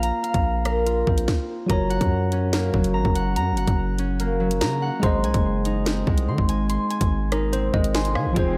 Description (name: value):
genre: hip hop, drill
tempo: 144 BPM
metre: 4/4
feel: half-time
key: unclear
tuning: A4 = 440 Hz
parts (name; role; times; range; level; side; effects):
- tine electric piano; accompaniment; 0.0-8.6 s; F3 to Ab5; -30 LUFS; equal; none
- concert harp; arpeggios; 0.0-8.6 s; Gb3 to C6; -28 LUFS; equal; analog delay
- distorted 808-style bass; bass; 0.0-8.6 s; F1 to Eb3; -27 LUFS; equal; distortion
- drill drum kit; drums; 0.0-8.5 s; hi-hat, kick drum, rim click, snare drum; -27 LUFS; equal; none
- muted studio string section; sustained chords; 8.4-8.6 s; F3 to C4; -31 LUFS; equal; none
room: moderate plate reverb, RT60 2.2 s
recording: dreamy mix soaked in reverb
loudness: -22 LUFS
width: mono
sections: 0.0-1.7 A section; 1.7-8.6 B section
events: stop 1.3-1.7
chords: 0.0 Bbsus2; 1.7 Gb; 5.0 Ab